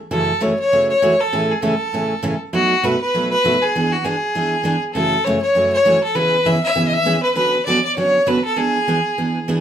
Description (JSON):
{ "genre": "country", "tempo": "198 BPM", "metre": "4/4", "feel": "swing 60% on 8ths", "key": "unclear", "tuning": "A4 = 440 Hz", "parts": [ { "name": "clear fiddle", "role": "melody", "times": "0.1-9.5 s", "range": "F#4 to E5", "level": "-17 LUFS", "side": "equal", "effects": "none" }, { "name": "picked steel-string acoustic guitar", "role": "accompaniment", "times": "0.1-9.6 s", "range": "F#2 to G#4", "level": "-20 LUFS", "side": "right 2 dB", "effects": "none" } ], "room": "moderate studio reverb, RT60 0.6 s", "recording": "none", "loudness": "-15 LUFS", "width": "side -9 dB against mid", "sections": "0.1-9.6 A section", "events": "none", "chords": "0.1 F#m7; 1.3 Amaj7; 2.5 B7; 3.7 E7; 5.0 F#m7; 6.2 C#m7; 7.4 Bmadd9/D; 8.6 E7", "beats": "| 0.11 0.41 0.72 1.02 | 1.32 1.62 1.93 2.23 | 2.53 2.84 3.14 3.44 | 3.74 4.05 4.35 4.65 | 4.95 5.26 5.56 5.86 | 6.16 6.46 6.77 7.07 | 7.37 7.67 7.98 8.28 | 8.58 8.88 9.18 9.48" }